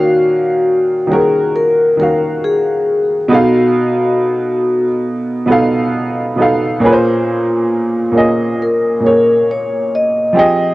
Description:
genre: hip hop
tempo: 68 BPM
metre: 4/4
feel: swing 66% on 16ths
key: unclear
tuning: A4 = 440 Hz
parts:
  - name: vibraphone with soft mallets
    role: melody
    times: 0.0-10.7 s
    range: F4 to Eb5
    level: -14 LUFS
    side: left 1 dB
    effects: analog delay
  - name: warm upright piano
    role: accompaniment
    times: 0.0-10.7 s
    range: Bb2 to F5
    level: -14 LUFS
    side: right 1 dB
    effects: cassette tape
room: light reverb, small room ambience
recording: cassette tape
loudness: -11 LUFS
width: side -18 dB against mid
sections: 0.0-10.7 A section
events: none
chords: 0.0 Ebm9; 3.3 B7#11; 6.8 Bbm9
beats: 0.66 1.54 2.42 | 3.30 4.19 5.07 5.95 | 6.83 7.71 8.60 9.48 | 10.36

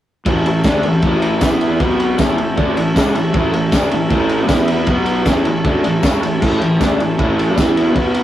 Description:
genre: garage rock duo or trio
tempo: 156 BPM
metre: 4/4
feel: straight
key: A major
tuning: A4 = 440 Hz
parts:
  - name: combo organ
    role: sustained chords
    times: 0.3-8.2 s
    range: B3 to B4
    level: -22 LUFS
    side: left 1 dB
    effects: none
  - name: crunchy overdriven guitar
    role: riff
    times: 0.3-8.2 s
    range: A2 to E4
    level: -16 LUFS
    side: equal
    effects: spring reverb
  - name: fuzz fingered electric bass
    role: bass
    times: 0.3-8.2 s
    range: A1 to E2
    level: -26 LUFS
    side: equal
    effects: none
  - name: crunchy breakbeat drum kit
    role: drums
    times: 0.3-8.2 s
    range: crash cymbal, kick drum, ride cymbal, snare drum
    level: -17 LUFS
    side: equal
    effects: none
  - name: tambourine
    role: percussion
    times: 0.6-7.7 s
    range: none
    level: -36 LUFS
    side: left 6 dB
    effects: none
room: moderate small room ambience, RT60 0.5 s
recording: rough rehearsal-room recording, tube saturation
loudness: -13 LUFS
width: side -12 dB against mid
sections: 0.3-8.2 A section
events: none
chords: 0.3 A; 1.4 E5; 1.8 B5; 2.2 A; 4.5 E5; 4.9 B5; 5.3 A; 7.6 E5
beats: | 0.26 0.64 1.03 1.41 | 1.80 2.18 2.57 2.95 | 3.34 3.73 4.11 4.50 | 4.88 5.26 5.65 6.04 | 6.42 6.80 7.19 7.57 | 7.96

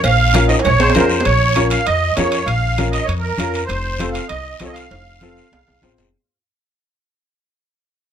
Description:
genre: latin, cumbia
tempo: 197 BPM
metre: 4/4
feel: straight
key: Bb harmonic minor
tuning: A4 = 440 Hz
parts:
  - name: musette accordion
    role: melody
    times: 0.0-5.9 s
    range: Bb4 to F5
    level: -18 LUFS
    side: right 3 dB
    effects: plate reverb
  - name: upright bass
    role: bass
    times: 0.0-6.1 s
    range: F1 to F2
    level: -19 LUFS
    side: left 1 dB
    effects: none
  - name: cowbell and timbales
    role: percussion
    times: 0.0-6.1 s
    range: none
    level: -23 LUFS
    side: right 3 dB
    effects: none
  - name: guiro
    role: percussion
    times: 0.0-6.1 s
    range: none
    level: -29 LUFS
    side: left 8 dB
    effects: none
  - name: congas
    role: percussion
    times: 0.1-6.0 s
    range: none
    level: -25 LUFS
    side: right 1 dB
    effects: none
  - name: clear upright piano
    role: accompaniment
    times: 0.3-6.0 s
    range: C4 to C5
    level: -22 LUFS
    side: left 3 dB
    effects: none
room: light reverb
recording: close, detailed microphones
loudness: -14 LUFS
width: side -9 dB against mid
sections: 0.0-1.3 A section; 1.3-6.1 B section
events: drum fill 0.5-1.3, 4.9-6.1; fade-out 1.3-6.1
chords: 0.0 Bbm; 3.7 F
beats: | 0.04 0.34 0.65 0.95 | 1.25 1.56 1.86 2.17 | 2.47 2.78 3.08 3.38 | 3.69 4.00 4.30 4.61 | 4.91 5.21 5.52 5.83

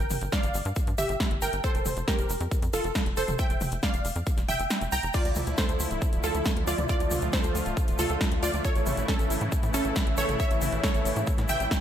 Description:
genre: uplifting trance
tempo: 137 BPM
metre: 4/4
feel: straight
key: D minor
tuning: A4 = 440 Hz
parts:
  - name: wide unison pluck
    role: melody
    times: 0.0-11.8 s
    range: C#4 to Bb5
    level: -30 LUFS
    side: right 1 dB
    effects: sidechain pumping, analog delay
  - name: tight sequencer bass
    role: bass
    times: 0.0-11.7 s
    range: D1 to A2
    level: -32 LUFS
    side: equal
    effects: sidechain pumping
  - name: big-room dance drum kit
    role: drums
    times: 0.0-11.8 s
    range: crash cymbal, hi-hat, snare drum, toms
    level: -33 LUFS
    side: equal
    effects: studio reverb
  - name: egg shaker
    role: percussion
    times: 0.1-11.8 s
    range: none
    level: -40 LUFS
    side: equal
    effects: none
  - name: electronic kick drum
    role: drums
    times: 0.3-11.8 s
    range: none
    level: -27 LUFS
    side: equal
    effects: studio reverb
  - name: lush unison pad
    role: sustained chords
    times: 5.1-11.8 s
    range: C#3 to F4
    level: -32 LUFS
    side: equal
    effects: chorus, sidechain pumping
room: light reverb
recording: none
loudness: -24 LUFS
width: side -10 dB against mid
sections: 0.0-11.8 A section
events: kick drops out 4.7-5.1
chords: 0.0 Gm; 1.6 Fsus2; 5.1 Dmadd9; 8.6 A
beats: 0.32 0.76 1.20 | 1.64 2.08 2.51 2.95 | 3.39 3.83 4.27 4.70 | 5.14 5.58 6.02 6.46 | 6.89 7.33 7.77 8.21 | 8.64 9.08 9.52 9.96 | 10.40 10.84 11.27 11.71

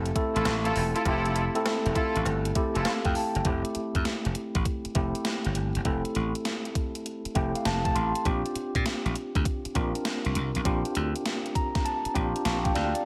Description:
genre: R&B, new jack swing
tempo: 100 BPM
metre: 4/4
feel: swing 66% on 16ths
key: F major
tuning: A4 = 440 Hz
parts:
  - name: tine electric piano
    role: accompaniment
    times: 0.0-13.1 s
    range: A3 to C6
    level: -32 LUFS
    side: equal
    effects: none
  - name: slap bass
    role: bass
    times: 0.0-12.9 s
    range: E1 to Bb2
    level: -32 LUFS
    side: equal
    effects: none
  - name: gated 80s digital drum machine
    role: drums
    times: 0.1-13.0 s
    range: hi-hat, kick drum, snare drum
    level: -33 LUFS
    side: equal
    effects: gated reverb, gated reverb snare, overdrive
  - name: muted studio string section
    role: stabs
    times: 0.3-2.8 s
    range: E4 to A4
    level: -34 LUFS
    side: equal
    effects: digital delay
  - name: cowbell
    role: percussion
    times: 0.5-3.0 s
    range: none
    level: -42 LUFS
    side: equal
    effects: none
room: light reverb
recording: none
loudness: -28 LUFS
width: mono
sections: 0.0-3.5 A section; 3.5-13.1 B section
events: tine electric piano fill 2.6-3.5, 7.1-8.3, 11.3-13.1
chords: 0.0 Fmaj7; 8.3 Bb69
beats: 0.45 | 1.05 1.65 2.25 2.85 | 3.45 4.05 4.65 5.25 | 5.85 6.45 7.05 7.65 | 8.25 8.85 9.45 10.05 | 10.65 11.25 11.85 12.45

